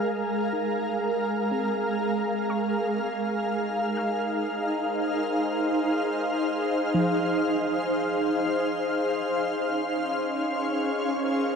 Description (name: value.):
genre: ambient.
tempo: 61 BPM.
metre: 3/4.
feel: straight.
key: unclear.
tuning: A4 = 440 Hz.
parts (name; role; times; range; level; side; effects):
shimmering ambient pad; sustained chords; 0.0-11.6 s; Ab3 to F5; -24 LUFS; equal; chorus, built-in reverb.
soft round pluck; arpeggios; 0.5-10.6 s; F3 to F6; -35 LUFS; right 1 dB; analog chorus, tape echo.
room: wet huge ambient reverb, RT60 8.3 s.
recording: dark, warm production.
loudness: -24 LUFS.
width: side -6 dB against mid.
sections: 0.0-11.6 A section.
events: fade-in on synth pluck 0.0-11.6.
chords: 0.0 Fm7.